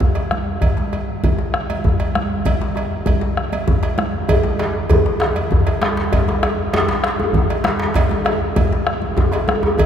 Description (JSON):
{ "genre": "west african traditional, West African drum ensemble", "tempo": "131 BPM (dotted quarters)", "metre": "12/8", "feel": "straight", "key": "none", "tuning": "none", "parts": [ { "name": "bombo", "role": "percussion", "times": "0.0-9.9 s", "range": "none", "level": "-20 LUFS", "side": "equal", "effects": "none" }, { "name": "congas", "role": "percussion", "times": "0.0-9.9 s", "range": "none", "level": "-24 LUFS", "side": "right 2 dB", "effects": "none" }, { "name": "djembe", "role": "percussion", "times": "0.0-9.9 s", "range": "none", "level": "-23 LUFS", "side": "left 2 dB", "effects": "none" }, { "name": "cowbell", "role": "percussion", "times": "0.2-9.9 s", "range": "none", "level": "-28 LUFS", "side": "right 4 dB", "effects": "none" }, { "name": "djembe", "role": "percussion", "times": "4.3-9.9 s", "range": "none", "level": "-20 LUFS", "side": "equal", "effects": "none" } ], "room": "wet cathedral reverb, RT60 5.3 s", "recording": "recorded in a church or concert hall", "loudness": "-16 LUFS", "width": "side -9 dB against mid", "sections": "0.0-4.3 A section; 4.3-9.9 B section", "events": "none", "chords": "none", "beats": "0.16 | 0.62 1.08 1.54 2.00 | 2.46 2.91 3.37 3.83 | 4.29 4.75 5.21 5.67 | 6.12 6.58 7.04 7.50 | 7.96 8.41 8.87 9.33 | 9.79" }